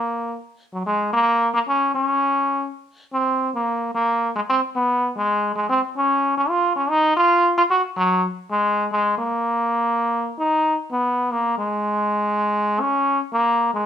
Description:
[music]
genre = jazz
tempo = 149 BPM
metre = 3/4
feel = swing 67% on 8ths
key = Bb minor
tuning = A4 = 439 Hz
[part]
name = trombone with metal mute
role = solo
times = 0.0-13.9 s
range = Gb3 to Gb4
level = -18 LUFS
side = equal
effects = none
[sound]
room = moderate studio reverb, RT60 0.7 s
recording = band playing live in one room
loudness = -18 LUFS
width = side -9 dB against mid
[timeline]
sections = 0.8-10.5 A section; 10.5-13.9 B section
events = none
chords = none

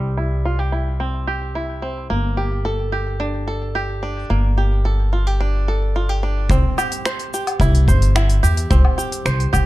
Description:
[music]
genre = folktronica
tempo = 109 BPM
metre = 4/4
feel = straight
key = unclear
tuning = A4 = 440 Hz
[part]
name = bluegrass banjo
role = arpeggios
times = 0.0-9.7 s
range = G3 to C5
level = -24 LUFS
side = right 1 dB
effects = low-pass filter, ping-pong delay
[part]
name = upright bass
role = bass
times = 0.0-9.7 s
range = G1 to E2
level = -18 LUFS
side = equal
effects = tube saturation
[part]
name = kick drum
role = drums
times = 6.5-9.6 s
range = none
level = -20 LUFS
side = equal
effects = none
[part]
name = organic electronic drum kit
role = drums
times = 6.5-9.6 s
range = finger snaps, hi-hat, shaker, woodblock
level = -25 LUFS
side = left 2 dB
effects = low-pass filter on hats, low-pass filter on perc, low-pass filter on snare, low-pass filter on room
[sound]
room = small room ambience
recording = dark, warm production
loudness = -17 LUFS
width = side -17 dB against mid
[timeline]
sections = 0.0-6.5 A section; 6.5-9.7 B section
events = filter sweep on five-string banjo 0.0-6.5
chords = 0.0 C; 2.1 Gmadd9; 6.5 C

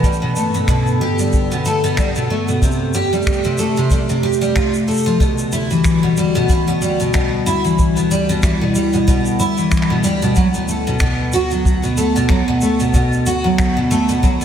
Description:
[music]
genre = folktronica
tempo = 93 BPM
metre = 4/4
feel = swing 56% on 16ths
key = unclear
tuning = A4 = 440 Hz
[part]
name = warbly tape-like pad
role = sustained chords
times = 0.0-14.4 s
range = D2 to F#5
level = -19 LUFS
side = right 1 dB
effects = chorus, built-in reverb
[part]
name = picked twelve-string acoustic guitar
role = arpeggios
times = 0.0-14.4 s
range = B2 to G4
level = -17 LUFS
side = equal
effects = lush chorus, ping-pong delay
[part]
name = kick drum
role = drums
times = 0.0-14.4 s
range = none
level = -17 LUFS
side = equal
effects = none
[part]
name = shaker and finger snaps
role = drums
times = 0.0-14.4 s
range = none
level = -27 LUFS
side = equal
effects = none
[sound]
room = moderate lush hall reverb, RT60 1.9 s, small room ambience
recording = dreamy mix soaked in reverb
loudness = -14 LUFS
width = side -9 dB against mid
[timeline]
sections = 0.0-5.2 A section; 5.2-14.4 B section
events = none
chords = 0.0 Gadd9; 2.6 Fadd9; 5.2 Em7/D; 10.4 D6

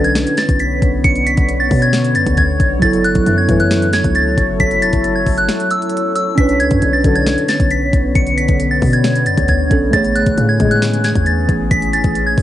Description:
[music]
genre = hip hop, trap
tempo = 135 BPM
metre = 4/4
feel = half-time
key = B dorian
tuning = A4 = 441 Hz
[part]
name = soft synth bell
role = melody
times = 0.0-12.4 s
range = E6 to C#7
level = -18 LUFS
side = equal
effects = chorus, phaser, cassette tape, analog delay
[part]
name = tine electric piano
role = accompaniment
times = 0.0-12.4 s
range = F#3 to C#5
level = -20 LUFS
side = right 3 dB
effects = medium tremolo
[part]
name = deep dark ambient pad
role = sustained chords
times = 0.0-12.4 s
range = D3 to C#5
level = -20 LUFS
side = left 2 dB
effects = chorus, built-in reverb
[part]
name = dark brass ensemble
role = stabs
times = 0.0-0.4, 3.3-3.9, 6.8-7.5, 10.4-11.0 s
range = A1 to G#3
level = -19 LUFS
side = left 4 dB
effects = none
[part]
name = warm 808-style bass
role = bass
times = 0.0-12.4 s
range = E1 to B2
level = -18 LUFS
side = equal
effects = none
[part]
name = trap drum kit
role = drums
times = 0.0-12.4 s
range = hi-hat, kick drum, snare drum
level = -18 LUFS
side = equal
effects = overdrive, cassette tape
[sound]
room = light reverb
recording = home recording on cassette, nothing above 10.9 kHz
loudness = -12 LUFS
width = side -13 dB against mid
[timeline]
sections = 0.0-12.4 A section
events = break 5.5-6.4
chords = 0.0 Bmadd9; 2.8 F#m7; 6.4 Bmadd9; 9.9 Amaj7

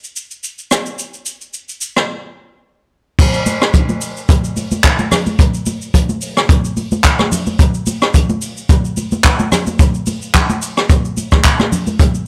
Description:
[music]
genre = amapiano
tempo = 109 BPM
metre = 4/4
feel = swing 55% on 16ths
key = none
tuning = none
[part]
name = jazz brush drum kit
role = drums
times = 0.0-12.3 s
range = crash cymbal, handclaps, hi-hat, kick drum, rim click, shaker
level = -15 LUFS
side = equal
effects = none
[part]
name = congas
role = percussion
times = 3.5-12.0 s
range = none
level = -22 LUFS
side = equal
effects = none
[sound]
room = small room ambience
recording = none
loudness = -15 LUFS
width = mono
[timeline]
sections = 0.0-3.2 A section; 3.2-12.3 B section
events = break 2.1-3.2; drop 3.2-12.3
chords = none

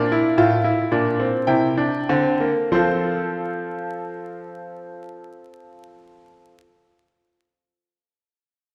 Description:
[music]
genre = classical, baroque-style 3-part fugue for grand piano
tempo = 46-58 BPM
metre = 3/4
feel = straight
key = F major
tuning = A4 = 439 Hz
[part]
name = bright concert grand piano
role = solo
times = 0.0-6.6 s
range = A2 to G5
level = -22 LUFS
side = equal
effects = none
[sound]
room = wet scoring stage reverb, RT60 1.9 s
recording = recorded in a church or concert hall, vinyl crackle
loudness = -21 LUFS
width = mono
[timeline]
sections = 0.0-2.7 A section; 2.7-6.6 B section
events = slowing down 0.0-2.7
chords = 0.0 F; 1.5 C7; 2.7 F

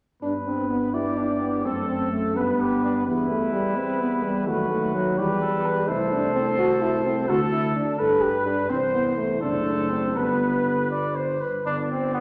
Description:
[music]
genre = classical, brass quintet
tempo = 85 BPM (dotted quarters)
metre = 6/8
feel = rubato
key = G major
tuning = A4 = 439 Hz
[part]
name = clear cornet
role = melody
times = 0.2-12.2 s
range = A4 to D5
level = -33 LUFS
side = equal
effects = none
[part]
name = clear French horn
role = accompaniment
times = 0.2-12.2 s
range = F#3 to A4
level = -27 LUFS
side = equal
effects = none
[part]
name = dark euphonium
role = accompaniment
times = 0.2-12.2 s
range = D3 to B3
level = -34 LUFS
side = equal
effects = none
[part]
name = warm tuba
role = bass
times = 0.2-12.2 s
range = F#1 to G2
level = -33 LUFS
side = equal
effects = none
[part]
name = mellow trumpet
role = second line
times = 0.9-12.2 s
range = B3 to D5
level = -30 LUFS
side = equal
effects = none
[sound]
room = wet recital hall reverb, RT60 1.6 s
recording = none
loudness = -24 LUFS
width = mono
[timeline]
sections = 0.2-11.6 A section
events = none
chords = 0.2 G; 1.7 F#dim; 2.4 G; 3.1 Em; 4.5 B/D#; 5.2 Em; 5.9 Am/C; 7.3 D5; 8.0 G; 8.7 C; 9.4 D7/F#; 10.2 G

